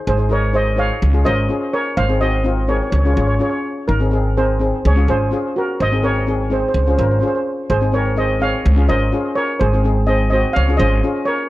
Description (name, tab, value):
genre	calypso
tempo	126 BPM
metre	4/4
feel	straight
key	Db major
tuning	A4 = 443 Hz
part	steel pan	accompaniment	0.0-11.4 s	C4 to Eb5	-22 LUFS	left 3 dB	none
part	steel pan	melody	0.1-11.5 s	Eb4 to F5	-20 LUFS	right 2 dB	tape echo
part	upright bass	bass	0.1-11.0 s	Ab1 to Db2	-17 LUFS	equal	none
room	little or no reverb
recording	dry, close 1970s-style studio recording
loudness	-15 LUFS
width	side -16 dB against mid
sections	0.1-11.5 A section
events	none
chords	0.1 Ab; 1.0 Db; 2.0 Ab; 2.9 Db; 3.9 Ab; 4.8 Db; 5.8 Ab; 6.8 Db; 7.7 Ab; 8.7 Db; 9.6 Ab; 10.6 Db